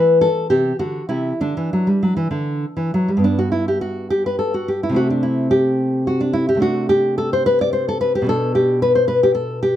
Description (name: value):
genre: classical, baroque-style dance for nylon-string guitar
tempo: 63-75 BPM (dotted quarters)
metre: 6/8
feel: rubato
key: G major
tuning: A4 = 440 Hz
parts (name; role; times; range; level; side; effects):
- nylon-string guitar; solo; 0.0-9.8 s; G2 to D5; -16 LUFS; equal; none
room: light reverb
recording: none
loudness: -16 LUFS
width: side -11 dB against mid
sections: 0.0-3.3 A section; 3.3-9.8 A section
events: none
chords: 0.0 N.C.; 0.5 Cadd9; 1.4 Dsus4; 3.3 G; 5.0 Am/C; 6.6 D5/C; 8.3 Bm7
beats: 0.51 | 1.41 2.33 | 3.25 4.11 | 4.96 5.79 | 6.62 7.46 | 8.28 9.08